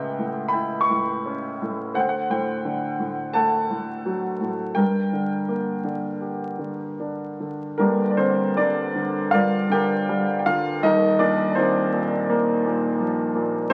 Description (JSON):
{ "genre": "classical, lyrical solo piano", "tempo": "75-87 BPM", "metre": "4/4", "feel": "rubato", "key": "G minor", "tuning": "A4 = 444 Hz", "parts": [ { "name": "warm grand piano", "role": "solo", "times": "0.0-13.7 s", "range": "Eb1 to C#6", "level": "-23 LUFS", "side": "equal", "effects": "none" } ], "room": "wet studio ambience, RT60 0.5 s", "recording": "very old 78 rpm record, vinyl crackle", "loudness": "-23 LUFS", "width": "mono", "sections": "0.0-7.8 A section; 7.8-13.7 A section", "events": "none", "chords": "0.0 A7/C#; 2.0 D7; 4.8 Gm; 10.8 Ebsus2" }